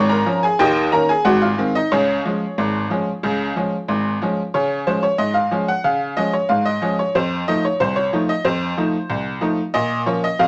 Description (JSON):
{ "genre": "ragtime piano", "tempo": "92 BPM", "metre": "2/4", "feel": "straight", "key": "Db major", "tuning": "A4 = 443 Hz", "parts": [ { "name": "tack piano", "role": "solo", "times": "0.0-10.5 s", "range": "Ab1 to Bb5", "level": "-19 LUFS", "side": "equal", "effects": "none" } ], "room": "moderate studio reverb, RT60 0.8 s", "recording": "none", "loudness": "-19 LUFS", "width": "mono", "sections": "0.0-4.5 A section; 4.5-10.5 B section", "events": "none", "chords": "0.0 Db; 0.6 Eb7; 1.2 Ab7; 1.9 Db; 7.1 F7; 9.7 Bbm" }